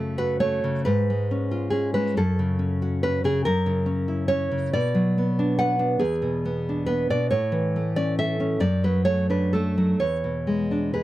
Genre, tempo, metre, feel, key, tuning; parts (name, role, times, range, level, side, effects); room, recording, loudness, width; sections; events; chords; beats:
romantic piece for solo classical guitar; 46 BPM (dotted quarters); 6/8; rubato; A4 = 438 Hz
nylon-string guitar; solo; 0.0-11.0 s; E2 to F#5; -21 LUFS; equal
little or no reverb; close, detailed microphones; -21 LUFS; side -15 dB against mid
0.0-11.0 A section
0.0 F#m; 0.8 C#7/G#; 2.2 F#m; 3.5 F#7; 4.7 Bm; 6.0 E7; 7.3 A; 8.6 D/F#; 10.0 E7
| 0.83 2.16 | 3.45 4.72 | 6.01 7.29 | 8.62 9.98